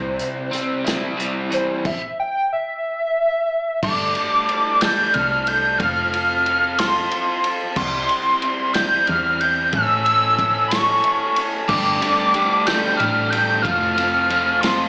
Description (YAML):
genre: indie rock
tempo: 61 BPM (dotted quarters)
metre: 6/8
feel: straight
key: unclear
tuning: A4 = 441 Hz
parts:
  - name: hollow square lead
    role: melody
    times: 0.0-14.9 s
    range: C5 to G6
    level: -21 LUFS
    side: equal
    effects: chorus, slapback echo
  - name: overdriven electric guitar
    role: riff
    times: 0.0-1.8, 11.7-14.9 s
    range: C3 to G4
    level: -26 LUFS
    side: equal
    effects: analog chorus, slapback echo
  - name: raw garage guitar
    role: riff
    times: 0.0-14.9 s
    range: F3 to A4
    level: -28 LUFS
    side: equal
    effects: overdrive
  - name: hollow-body short-scale picked electric bass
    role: bass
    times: 0.0-0.2, 3.8-14.9 s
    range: F1 to E2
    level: -32 LUFS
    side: equal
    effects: none
  - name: vintage drum kit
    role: drums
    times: 0.2-14.8 s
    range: crash cymbal, hi-hat, kick drum, ride cymbal, snare drum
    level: -28 LUFS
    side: equal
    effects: none
room: light reverb, small room ambience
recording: live gig heard through the venue's PA, club reverb, small speaker sound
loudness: -20 LUFS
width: mono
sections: 0.0-3.8 A section; 3.8-14.9 B section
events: analog synth lead solo 0.0-3.8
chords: 0.0 C; 1.9 N.C.; 3.8 Gsus2; 5.8 F; 7.8 C; 9.7 A; 11.7 Gsus2; 13.7 F